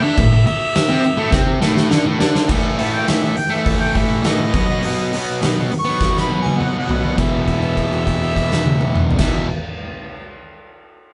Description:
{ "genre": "garage rock duo or trio", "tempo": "102 BPM", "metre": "4/4", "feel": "straight", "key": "unclear", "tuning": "A4 = 440 Hz", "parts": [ { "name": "clear harmonica", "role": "melody", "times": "0.0-9.4 s", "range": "D#5 to C#6", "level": "-26 LUFS", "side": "equal", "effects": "overdrive" }, { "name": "fuzz guitar", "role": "riff", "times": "0.0-9.5 s", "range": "E2 to D4", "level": "-20 LUFS", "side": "equal", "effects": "distortion" }, { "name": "oversized low-tuned drum kit", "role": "drums", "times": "0.2-9.3 s", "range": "crash cymbal, hi-hat, kick drum, snare drum, toms", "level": "-22 LUFS", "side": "equal", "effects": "none" } ], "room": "moderate studio reverb, RT60 0.8 s", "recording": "band playing live in one room, nothing above 10.7 kHz", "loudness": "-17 LUFS", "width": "mono", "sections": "0.0-2.5 A section; 2.5-7.2 B section; 7.2-9.5 C section", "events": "harmonica solo 0.0-2.5; drum fill 1.3-2.5, 6.0-7.2; held note 7.2-9.2", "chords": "0.0 A5; 4.5 B; 7.2 E5" }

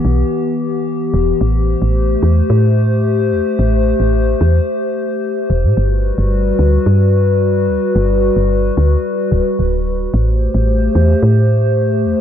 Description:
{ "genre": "IDM", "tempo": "110 BPM", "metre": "4/4", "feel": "straight", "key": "A dorian", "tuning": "A4 = 439 Hz", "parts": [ { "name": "warbly tape-like pad", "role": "sustained chords", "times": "0.0-12.2 s", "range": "E3 to C5", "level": "-16 LUFS", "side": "left 2 dB", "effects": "chorus, built-in reverb" }, { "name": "woody FM bass", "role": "bass", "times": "0.0-12.1 s", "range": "D1 to A2", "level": "-14 LUFS", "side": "equal", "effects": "none" } ], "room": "light reverb, digital ambience", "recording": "dark, warm production", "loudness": "-12 LUFS", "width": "side -9 dB against mid", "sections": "0.0-10.1 A section; 10.1-12.2 B section", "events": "none", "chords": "0.0 Em; 1.4 Am7; 5.8 Gmaj7; 10.1 Am7" }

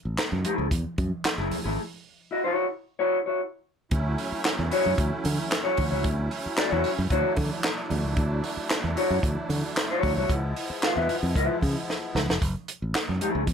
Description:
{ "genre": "funk", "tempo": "113 BPM", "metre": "4/4", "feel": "straight", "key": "unclear", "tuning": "A4 = 440 Hz", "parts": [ { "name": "fingered electric bass", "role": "bass", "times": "0.1-13.5 s", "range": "E#1 to D3", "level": "-28 LUFS", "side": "equal", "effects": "none" }, { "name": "compact cocktail drum kit", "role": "drums", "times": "0.2-13.5 s", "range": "handclaps, hi-hat, kick drum, snare drum", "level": "-28 LUFS", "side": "equal", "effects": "none" }, { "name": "congas", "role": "percussion", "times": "0.2-13.5 s", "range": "none", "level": "-37 LUFS", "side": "right 3 dB", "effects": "none" }, { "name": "mellow electric guitar", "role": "accompaniment", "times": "0.4-13.4 s", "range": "A3 to E#5", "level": "-25 LUFS", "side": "left 2 dB", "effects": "none" }, { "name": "musette accordion", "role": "sustained chords", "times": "3.9-12.4 s", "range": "E#3 to E4", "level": "-32 LUFS", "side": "right 1 dB", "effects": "none" } ], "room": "light reverb", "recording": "none", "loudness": "-24 LUFS", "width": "side -7 dB against mid", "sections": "0.0-3.9 A section; 3.9-12.4 B section; 12.4-13.5 A section", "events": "drum fill 11.9-12.4", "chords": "0.0 F#m9; 1.8 C#madd11/E; 3.9 Dmaj9; 10.3 C#7#9; 12.4 F#m9" }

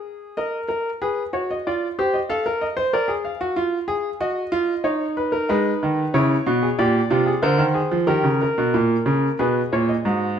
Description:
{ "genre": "classical, baroque-style 3-part fugue for grand piano", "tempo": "93 BPM", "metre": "4/4", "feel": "straight", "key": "unclear", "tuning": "A4 = 436 Hz", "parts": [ { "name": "clear grand piano", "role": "solo", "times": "0.0-10.4 s", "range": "G#2 to F5", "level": "-19 LUFS", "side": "right 1 dB", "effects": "none" } ], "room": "wet stone room reverb, RT60 1.2 s", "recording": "none", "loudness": "-19 LUFS", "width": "side -8 dB against mid", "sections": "0.0-10.4 A section", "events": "none", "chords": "0.4 D#m/A#; 1.7 F7; 2.9 A# (rootless); 4.2 D#m; 5.5 G#m; 6.8 A#7; 8.1 D# (rootless); 9.4 G#m" }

